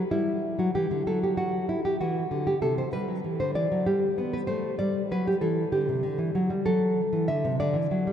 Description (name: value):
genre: classical, baroque-style dance for nylon-string guitar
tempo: 64 BPM (dotted quarters)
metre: 6/8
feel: rubato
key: G major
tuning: A4 = 440 Hz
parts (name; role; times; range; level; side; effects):
- nylon-string guitar; solo; 0.0-8.1 s; C3 to E5; -24 LUFS; equal; none
room: wet cathedral reverb, RT60 5.7 s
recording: in a vast, echoing space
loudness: -24 LUFS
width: side -9 dB against mid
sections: 0.0-8.1 A section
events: none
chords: 0.0 G5; 1.1 D7/F# (rootless); 2.9 G; 4.8 G5; 6.7 F#m